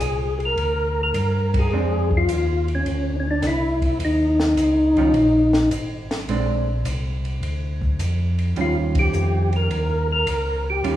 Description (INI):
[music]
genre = soul jazz organ trio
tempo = 105 BPM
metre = 4/4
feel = swing 69% on 8ths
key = unclear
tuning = A4 = 440 Hz
[part]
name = percussive tonewheel organ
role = melody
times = 0.0-11.0 s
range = Db4 to Bb4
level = -20 LUFS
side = left 1 dB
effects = chorus vibrato, slow rotary speaker
[part]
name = mellow tonewheel organ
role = bass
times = 0.0-11.0 s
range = Ab1 to G2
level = -23 LUFS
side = equal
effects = chorus vibrato, slow rotary speaker
[part]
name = compact cocktail drum kit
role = drums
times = 0.0-11.0 s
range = hi-hat, kick drum, ride cymbal, snare drum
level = -28 LUFS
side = equal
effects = none
[part]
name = vintage hollow-body jazz guitar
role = accompaniment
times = 1.7-11.0 s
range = Eb3 to F4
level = -26 LUFS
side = right 4 dB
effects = none
[sound]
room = wet recital hall reverb, RT60 1.6 s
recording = recorded in a church or concert hall, studio reverb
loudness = -18 LUFS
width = side -12 dB against mid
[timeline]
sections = 0.0-11.0 A section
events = band accent 1.4, 8.8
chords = 0.0 Bb9; 4.0 Eb7(no3); 6.3 Bb9; 8.6 Eb9